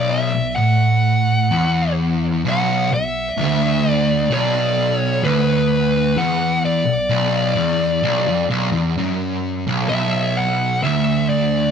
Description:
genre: metal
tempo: 64 BPM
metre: 4/4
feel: straight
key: B minor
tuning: A4 = 440 Hz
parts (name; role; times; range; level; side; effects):
- fuzz lead guitar; melody; 0.0-11.7 s; B4 to F#5; -20 LUFS; left 1 dB; distortion, ping-pong delay
- fuzz guitar; riff; 0.0-11.7 s; B1 to A2; -18 LUFS; equal; distortion
room: light reverb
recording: band playing live in one room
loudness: -16 LUFS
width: side -7 dB against mid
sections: 0.0-9.9 A section; 9.9-11.7 B section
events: none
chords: 0.0 Bm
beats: 0.59 1.52 | 2.45 3.38 4.31 5.24 | 6.17 7.10 8.04 8.97 | 9.90 10.84

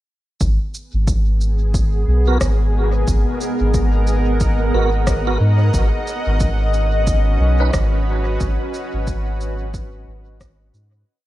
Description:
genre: ambient dub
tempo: 90 BPM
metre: 4/4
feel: swing 60% on 16ths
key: G# minor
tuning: A4 = 440 Hz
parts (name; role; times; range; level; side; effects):
- granular cloud pad; sustained chords; 1.5-11.1 s; B3 to F#5; -23 LUFS; equal; built-in reverb, vintage 12-bit sampler grit
- soft dub sub bass; bass; 0.4-11.0 s; G#1 to G#2; -17 LUFS; equal; none
- electronic kick drum; drums; 0.4-10.6 s; none; -22 LUFS; equal; overdrive, studio reverb
- electronic shaker and rim click; drums; 0.4-10.9 s; none; -29 LUFS; equal; studio reverb, dub echo
- tonewheel organ; stabs; 2.3-7.7 s; B3 to B4; -26 LUFS; right 2 dB; chorus vibrato, fast rotary speaker, dub echo
room: little or no reverb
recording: none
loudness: -16 LUFS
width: side -15 dB against mid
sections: 0.4-11.1 groove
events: fade-out 7.5-11.1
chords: 0.4 G#m9; 5.7 Badd9/G#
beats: | 0.41 1.07 1.74 2.41 | 3.07 3.74 4.41 5.07 | 5.74 6.41 7.07 7.74 | 8.41 9.07 9.74 10.41

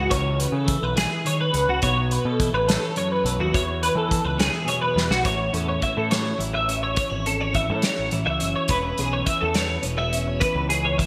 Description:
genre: math rock and midwest emo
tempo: 70 BPM (dotted quarters)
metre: 6/8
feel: straight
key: unclear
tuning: A4 = 440 Hz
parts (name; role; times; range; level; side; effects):
- twelve-string electric guitar; accompaniment; 0.0-11.1 s; E2 to B4; -31 LUFS; equal; none
- twelve-string electric guitar; arpeggios; 0.0-11.1 s; F#4 to E5; -26 LUFS; equal; ensemble chorus
- growling picked electric bass; bass; 0.0-11.1 s; E1 to E3; -29 LUFS; equal; overdrive
- loose indie drum kit; drums; 0.1-11.1 s; hi-hat, kick drum, snare drum; -28 LUFS; equal; none
room: wet lush hall reverb, RT60 1.7 s, studio ambience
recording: bright 1980s-style digital production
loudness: -23 LUFS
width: mono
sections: 0.0-5.3 A section; 5.3-11.1 B section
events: drum fill 5.0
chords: 0.0 C#m7; 1.8 B9sus4; 3.5 E6; 5.3 Amaj7; 8.7 E6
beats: | 0.10 0.96 | 1.82 2.68 | 3.54 4.40 | 5.26 6.12 | 6.98 7.84 | 8.70 9.56 | 10.42

